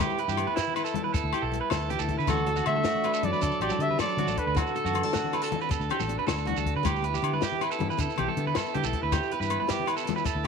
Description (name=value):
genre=highlife guitar band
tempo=105 BPM (dotted quarters)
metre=12/8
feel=straight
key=unclear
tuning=A4 = 438 Hz
part: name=picked steel-string acoustic guitar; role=accompaniment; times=0.0-10.5 s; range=D3 to F#4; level=-35 LUFS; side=left 10 dB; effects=none
part: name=electric guitar at the edge of break-up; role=arpeggios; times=0.0-10.5 s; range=E4 to B4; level=-30 LUFS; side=right 10 dB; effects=slapback echo
part: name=fingered electric bass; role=bass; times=0.0-10.4 s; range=A1 to D3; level=-32 LUFS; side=equal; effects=none
part: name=compact cocktail drum kit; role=drums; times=0.0-10.5 s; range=hi-hat, kick drum, snare drum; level=-34 LUFS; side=left 4 dB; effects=none
part: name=congas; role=percussion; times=0.0-10.3 s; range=none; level=-36 LUFS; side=left 12 dB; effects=none
part: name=shekere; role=percussion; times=0.0-10.3 s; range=none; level=-37 LUFS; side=right 6 dB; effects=none
part: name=agogo bells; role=percussion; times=0.4-10.1 s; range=none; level=-36 LUFS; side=left 12 dB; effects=none
part: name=clear trumpet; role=melody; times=2.3-5.7 s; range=A4 to E5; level=-29 LUFS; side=left 3 dB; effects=none
part: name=breathy trombone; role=second line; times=2.3-5.7 s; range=D3 to A3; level=-34 LUFS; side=right 12 dB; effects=none
room=moderate echo chamber reverb, RT60 1.4 s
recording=1960s-style stereo with parts hard left and right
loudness=-25 LUFS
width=side -6 dB against mid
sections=0.0-10.5 A section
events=drum fill 1.3-2.3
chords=0.0 Em; 2.3 D; 6.9 Em